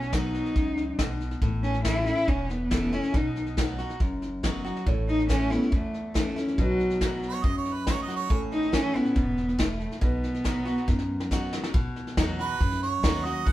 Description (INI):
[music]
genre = honky-tonk and classic country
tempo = 139 BPM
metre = 4/4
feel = straight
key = B mixolydian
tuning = A4 = 441 Hz
[part]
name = dark cello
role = melody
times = 0.0-11.3 s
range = F#3 to E4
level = -28 LUFS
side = equal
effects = none
[part]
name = picked steel-string acoustic guitar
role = accompaniment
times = 0.0-13.5 s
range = E2 to F#4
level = -32 LUFS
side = left 2 dB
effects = none
[part]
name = upright bass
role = bass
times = 0.0-13.5 s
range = E1 to B2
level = -33 LUFS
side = equal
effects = none
[part]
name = soft brush drum kit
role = drums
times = 0.0-13.5 s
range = hi-hat, kick drum, snare drum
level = -28 LUFS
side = equal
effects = none
[part]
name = dark baby grand piano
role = accompaniment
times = 4.9-11.7 s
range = C#4 to C#5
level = -40 LUFS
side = right 4 dB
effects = none
[part]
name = bright harmonica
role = second line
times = 7.3-8.4, 12.4-13.5 s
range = B4 to F#5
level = -30 LUFS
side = right 6 dB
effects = none
[sound]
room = moderate stone room reverb, RT60 1.1 s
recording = band playing live in one room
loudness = -24 LUFS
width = side -15 dB against mid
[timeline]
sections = 0.0-11.7 A section; 11.7-13.5 B section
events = drum fill 10.9-11.7; harmonica solo 11.7-13.5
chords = 0.0 B; 1.4 A; 3.1 B; 4.9 A; 6.6 B; 8.3 A; 10.0 B